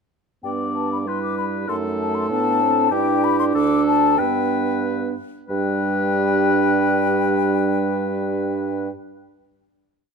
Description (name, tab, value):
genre	quick classical-period movement for wind quintet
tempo	89-98 BPM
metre	2/4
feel	straight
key	G major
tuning	A4 = 440 Hz
part	mellow hollow concert flute	melody	0.4-8.9 s	G5 to D6	-23 LUFS	left 11 dB	none
part	warm French horn	accompaniment	0.4-8.9 s	G3 to D4	-25 LUFS	equal	none
part	mellow bassoon	bass	0.4-8.9 s	D2 to A2	-26 LUFS	right 3 dB	none
part	warm oboe	second line	0.5-8.9 s	G4 to D5	-27 LUFS	left 4 dB	none
part	dark clarinet	accompaniment	0.5-8.9 s	D4 to E4	-24 LUFS	right 14 dB	none
room	moderate recital hall reverb, RT60 1.4 s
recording	close, detailed microphones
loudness	-18 LUFS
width	side -5 dB against mid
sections	0.5-5.5 A section; 5.5-8.1 final chord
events	slowing down 2.3-5.5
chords	0.5 G; 1.7 F#dim7; 2.9 G5; 3.5 D5; 4.2 G